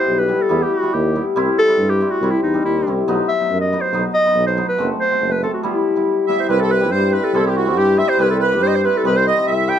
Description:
klezmer; 140 BPM; 2/4; straight; A4 = 439 Hz
warm clarinet; melody; 0.0-9.8 s; D#4 to G5; -18 LUFS; equal
cimbalom; accompaniment; 0.0-9.8 s; F#3 to A4; -19 LUFS; left 2 dB
warm tuba; bass; 0.1-9.7 s; F#1 to G2; -21 LUFS; equal
accordion; second line; 6.3-9.8 s; F#4 to E5; -22 LUFS; right 9 dB; light tremolo tuning
moderate studio ambience, RT60 0.5 s; close, detailed microphones; -15 LUFS; side -9 dB against mid
0.0-6.5 A section; 6.5-9.8 B section
0.0 Em; 1.4 C; 3.1 B; 4.8 F#dim; 5.6 Em; 6.5 C

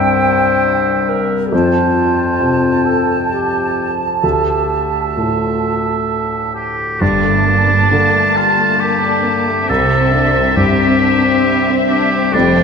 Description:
cinematic, emotional film score for orchestra; 67 BPM; 3/4; uneven beats, rubato; G dorian; A4 = 441 Hz
clear oboe; second line; 0.0-12.6 s; D4 to G5; -17 LUFS; right 1 dB
small flute group; second line; 0.0-6.6 s; G5 to A5; -19 LUFS; right 6 dB
warm clarinet; second line; 0.0-6.1 s; F4 to C5; -19 LUFS; left 2 dB
warm grand piano; accompaniment; 0.0-12.6 s; C2 to D3; -17 LUFS; left 2 dB
muted studio violin section; melody; 7.0-12.6 s; E5 to A5; -21 LUFS; left 3 dB
muted studio violin section; second line; 7.0-12.6 s; G3 to D4; -20 LUFS; left 5 dB
muted studio viola section; accompaniment; 7.0-12.6 s; A3 to C4; -21 LUFS; right 2 dB
muted studio cello section; bass; 7.0-12.6 s; F2 to C3; -21 LUFS; right 4 dB
muted studio double bass section; bass; 7.0-12.6 s; F1 to C2; -22 LUFS; right 6 dB
wet scoring stage reverb, RT60 1.8 s; -12 LUFS; side -6 dB against mid
0.0-7.0 A section; 7.0-12.6 A section
0.0 C; 1.5 Fadd9; 4.2 Dmadd9; 7.0 Gmadd9; 9.7 Cadd9

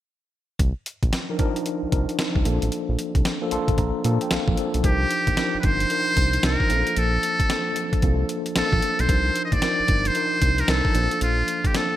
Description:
R&B, new jack swing; 113 BPM; 4/4; swing 63% on 16ths; C dorian; A4 = 440 Hz
round analog bass; bass; 0.6-11.7 s; G1 to Bb2; -24 LUFS; equal
boom bap sampler-style drum kit; drums; 0.6-11.9 s; hi-hat, kick drum, snare drum; -24 LUFS; equal; gated reverb
mellow tine electric piano; accompaniment; 1.3-12.0 s; F3 to C6; -26 LUFS; left 1 dB; medium stereo tremolo
trumpet with metal mute; melody; 4.9-12.0 s; F4 to Eb5; -23 LUFS; equal
light reverb, digital ambience; bright 1980s-style digital production; -20 LUFS; side -13 dB against mid
0.6-4.8 A section; 4.8-12.0 B section
tine electric piano fill 3.2-4.8
0.6 Cm11; 2.5 Bbmaj7; 4.8 Cm11; 6.7 Bbmaj7; 9.1 Cm11; 10.9 Bbmaj7

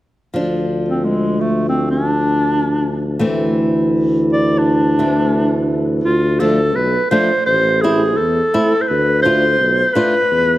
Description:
klezmer; free time; D dorian sharp4; A4 = 440 Hz
flamenco guitar; accompaniment; 0.3-10.1 s; E3 to F4; -19 LUFS; equal
warm tuba; bass; 0.3-10.6 s; A1 to E2; -19 LUFS; equal
clear clarinet; melody; 0.9-10.6 s; G#3 to D5; -16 LUFS; equal
wet scoring stage reverb, RT60 1.9 s; -13 LUFS; side -15 dB against mid
0.3-6.0 A section; 6.0-10.6 B section
0.3 Dm; 3.2 Am/D; 6.0 Dm; 7.5 Am; 8.9 Dm

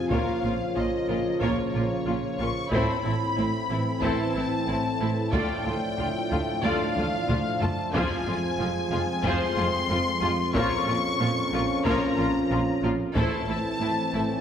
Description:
cinematic, hybrid orchestral and electronic film score; 92 BPM; 4/4; straight; A4 = 440 Hz
warm symphonic violin section; melody; 0.0-14.4 s; Db5 to Db6; -31 LUFS; left 4 dB
dark French horn section; sustained chords; 0.0-14.4 s; Ab3 to F4; -32 LUFS; left 3 dB
mellow trombone section; sustained chords; 0.0-14.4 s; F2 to F3; -32 LUFS; right 3 dB
warbly tape-like pad; sustained chords; 0.0-14.4 s; F3 to D5; -34 LUFS; equal; chorus, built-in reverb
rich symphonic violin section; second line; 0.1-14.2 s; C4 to D5; -34 LUFS; left 3 dB
rich symphonic viola section; accompaniment; 0.1-14.2 s; F3 to F4; -33 LUFS; equal
rich symphonic cello section; bass; 0.1-14.2 s; D2 to Bb2; -32 LUFS; right 2 dB
warm symphonic double bass section; bass; 0.1-14.2 s; F1 to D2; -33 LUFS; right 2 dB
taiko ensemble; drums; 0.1-13.8 s; -33 LUFS; equal
wet scoring stage reverb, RT60 1.7 s; -23 LUFS; side -8 dB against mid
0.0-14.4 A section
drum fill 7.0-7.9
0.1 Bbm; 2.7 Am; 5.3 Dm; 7.9 Fm; 10.5 Bbm; 13.2 Am

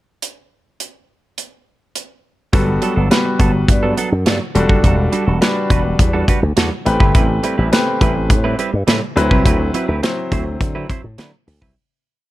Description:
early-eighties boogie funk; 104 BPM; 4/4; straight; A4 = 440 Hz
modern studio drum kit; drums; 0.2-11.8 s; hi-hat, kick drum, snare drum; -16 LUFS; equal
clear baby grand piano; accompaniment; 2.5-10.9 s; F#3 to C5; -19 LUFS; left 1 dB
semi-hollow electric guitar; riff; 2.5-11.7 s; F#3 to C5; -23 LUFS; right 4 dB; lush chorus
slap bass with an envelope filter; bass; 2.5-11.7 s; E1 to D3; -18 LUFS; equal
small room reverb; -13 LUFS; side -16 dB against mid
0.2-2.5 pickup bar; 2.5-11.8 verse
fade-out 9.5-11.8
0.2 N.C.; 2.5 Gmaj9; 4.5 Em11; 6.9 Am9; 9.2 D13

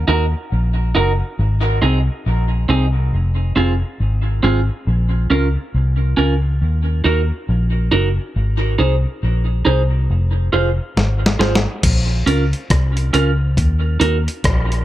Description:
dub reggae; 69 BPM; 4/4; swing 62% on 16ths; Bb minor; A4 = 440 Hz
vintage muted fingered electric bass; bass; 0.0-14.8 s; F1 to Eb2; -16 LUFS; equal
semi-hollow electric guitar; accompaniment; 0.1-14.2 s; C4 to C5; -21 LUFS; right 3 dB; dub echo
dusty soul sampler-style drum kit; drums; 11.0-14.8 s; crash cymbal, hi-hat, kick drum, rim click, snare drum; -18 LUFS; left 1 dB
light reverb; -15 LUFS; side -14 dB against mid
0.0-11.8 A section; 11.8-14.8 B section
drum fill 11.0-11.8
0.0 Ebm; 1.4 Ab; 3.1 Fm; 4.9 Bbm; 6.6 Ebm; 8.4 Ab; 10.1 Fm; 11.8 Bbm; 13.6 Ebm

